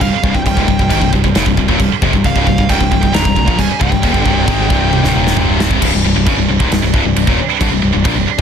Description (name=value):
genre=heavy metal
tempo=134 BPM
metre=4/4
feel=straight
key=C minor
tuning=A4 = 441 Hz
part: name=high-gain lead guitar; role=melody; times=0.0-5.6 s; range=F5 to Bb5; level=-20 LUFS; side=right 1 dB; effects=distortion
part: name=pipe organ, cornet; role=sustained chords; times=0.0-8.4 s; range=C3 to D4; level=-28 LUFS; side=equal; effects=none
part: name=fuzz guitar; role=riff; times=0.0-5.8 s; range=C2 to Ab3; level=-20 LUFS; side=right 1 dB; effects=distortion
part: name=heavy high-gain guitar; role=riff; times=0.0-8.4 s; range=C2 to Ab3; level=-18 LUFS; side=right 14 dB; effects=distortion
part: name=tight distorted guitar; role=riff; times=0.0-8.4 s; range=C2 to Ab3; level=-17 LUFS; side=left 11 dB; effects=distortion
part: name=modern bright picked electric bass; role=bass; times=0.0-8.4 s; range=C1 to Bb1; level=-18 LUFS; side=equal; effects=none
part: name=modern studio drum kit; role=drums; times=0.0-8.4 s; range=china cymbal, crash cymbal, kick drum, snare drum, toms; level=-16 LUFS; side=right 1 dB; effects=none
room=small room ambience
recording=dense, heavily limited modern master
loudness=-11 LUFS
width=side -7 dB against mid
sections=0.0-5.8 A section; 5.8-8.4 B section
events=drum fill 4.9-5.8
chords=0.0 Cm; 5.8 C5